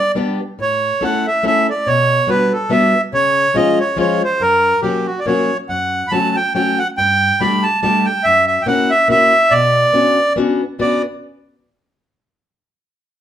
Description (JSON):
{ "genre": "musette", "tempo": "141 BPM", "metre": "3/4", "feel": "swing 54% on 8ths", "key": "B minor", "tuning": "A4 = 440 Hz", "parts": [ { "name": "accordion", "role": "melody", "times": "0.0-11.0 s", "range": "F#4 to B5", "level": "-14 LUFS", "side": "right 1 dB", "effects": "none" }, { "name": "fingerpicked plugged-in acoustic archtop guitar", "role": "accompaniment", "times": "0.1-11.0 s", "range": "F#2 to A4", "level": "-18 LUFS", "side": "left 3 dB", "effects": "none" } ], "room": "wet large studio reverb, RT60 0.9 s", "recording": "band playing live in one room", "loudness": "-13 LUFS", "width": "side -10 dB against mid", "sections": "0.0-10.8 A section; 10.8-12.1 B section", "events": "none", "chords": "0.0 G; 0.6 A; 1.9 Gmaj7/B; 3.1 C#; 4.4 F#; 5.7 F#m; 7.0 Gsus2; 8.2 F#7; 9.5 Bmadd9" }